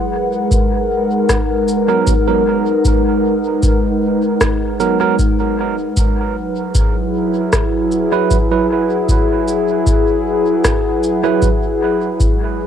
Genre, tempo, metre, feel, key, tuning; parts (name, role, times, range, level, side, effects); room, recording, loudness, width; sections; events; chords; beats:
ambient dub; 77 BPM; 4/4; swing 53% on 16ths; A4 = 440 Hz
warbly tape-like pad; sustained chords; 0.0-12.7 s; F#3 to F#5; -16 LUFS; left 1 dB; chorus, built-in reverb, cassette tape
electronic kick drum; drums; 0.5-12.4 s; -17 LUFS; equal; cassette tape
electronic shaker and rim click; drums; 0.5-12.4 s; -22 LUFS; equal; cassette tape, dub echo
bright tine electric piano; stabs; 1.9-11.5 s; F#3 to B4; -20 LUFS; right 9 dB; cassette tape, dub echo
light reverb, digital ambience; home recording on cassette; -13 LUFS; side -9 dB against mid
0.0-12.7 A section
0.0 G#m9; 6.0 F#7sus4
0.51 1.29 2.07 | 2.85 3.63 4.41 5.19 | 5.97 6.75 7.53 8.31 | 9.09 9.87 10.64 11.42 | 12.20